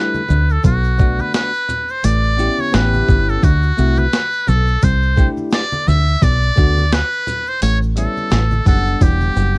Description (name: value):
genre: hip hop, jazz-hop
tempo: 86 BPM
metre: 4/4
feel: swing 59% on 16ths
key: unclear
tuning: A4 = 440 Hz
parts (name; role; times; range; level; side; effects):
- trumpet with metal mute; melody; 0.0-9.6 s; F#4 to E5; -19 LUFS; equal; cassette tape
- bell-like tine electric piano; accompaniment; 0.0-9.6 s; G3 to F#5; -22 LUFS; left 2 dB; phaser, cassette tape
- congas and tube shaker; percussion; 0.1-9.6 s; none; -30 LUFS; right 1 dB; none
- deep dub fingered electric bass; bass; 0.3-9.6 s; E1 to D2; -15 LUFS; equal; none
- boom bap sampler-style drum kit; drums; 0.3-9.6 s; hi-hat, kick drum, shaker, snare drum; -15 LUFS; equal; cassette tape
room: little or no reverb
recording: home recording on cassette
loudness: -13 LUFS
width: side -30 dB against mid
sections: 0.0-9.6 A section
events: none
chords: 0.0 C69 (rootless); 0.6 Bm7; 2.0 A7; 2.7 A9; 3.4 D7; 4.8 C69; 6.2 Bm7; 7.6 A7; 8.3 Asus2; 9.0 Em9